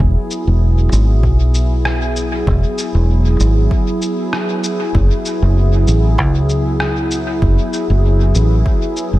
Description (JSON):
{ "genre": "ambient dub", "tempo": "97 BPM", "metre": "4/4", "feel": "swing 55% on 16ths", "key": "unclear", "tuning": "A4 = 440 Hz", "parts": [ { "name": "warm analog pad", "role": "sustained chords", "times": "0.0-9.2 s", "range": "F#3 to G#4", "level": "-20 LUFS", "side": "equal", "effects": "lush chorus" }, { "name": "fingered electric bass", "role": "bass", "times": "0.0-9.2 s", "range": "E1 to C#2", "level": "-13 LUFS", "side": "equal", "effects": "tube saturation" }, { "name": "electronic kick drum", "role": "drums", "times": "0.0-8.8 s", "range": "none", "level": "-18 LUFS", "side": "equal", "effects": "none" }, { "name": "electronic shaker and rim click", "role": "drums", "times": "0.3-9.1 s", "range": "none", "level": "-26 LUFS", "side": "left 1 dB", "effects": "dub echo" } ], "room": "light reverb, digital ambience", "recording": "none", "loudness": "-12 LUFS", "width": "side -16 dB against mid", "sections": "0.0-9.2 A section", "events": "none", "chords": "0.0 E; 4.9 F#m9" }